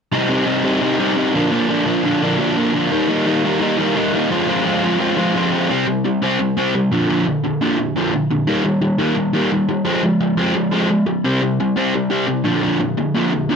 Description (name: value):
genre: punk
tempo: 173 BPM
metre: 4/4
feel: straight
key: C minor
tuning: A4 = 440 Hz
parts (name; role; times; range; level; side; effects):
- overdriven semi-hollow guitar; solo; 0.1-13.6 s; Bb2 to F4; -15 LUFS; equal; none
room: moderate studio reverb, RT60 0.6 s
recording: none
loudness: -15 LUFS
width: side -6 dB against mid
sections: 0.1-5.7 A section; 5.7-13.6 B section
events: none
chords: 0.1 Cm; 1.4 Bb; 2.9 Eb; 4.3 Fm; 5.7 C5; 6.9 Bb; 8.5 Eb; 9.9 Fm; 11.2 C5; 12.5 Bb